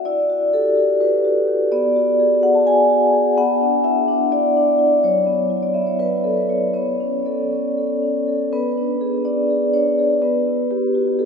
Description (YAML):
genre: classical, contemporary piece for solo vibraphone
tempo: 250 BPM (eighths)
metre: 7/8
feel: rubato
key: B minor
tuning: A4 = 440 Hz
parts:
  - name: vibraphone with soft mallets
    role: solo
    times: 0.0-11.3 s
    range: F#3 to A5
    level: -16 LUFS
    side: left 1 dB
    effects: none
room: wet cathedral reverb, RT60 4.6 s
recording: minimal, uncompressed stereo recording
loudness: -16 LUFS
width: side -6 dB against mid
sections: 0.0-8.5 A section; 8.5-11.3 B section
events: none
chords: 0.1 Em9; 1.7 Bm6; 3.4 Dadd9/B; 5.0 F#7sus4; 6.7 Bm9; 8.5 Bm6; 10.2 G6/B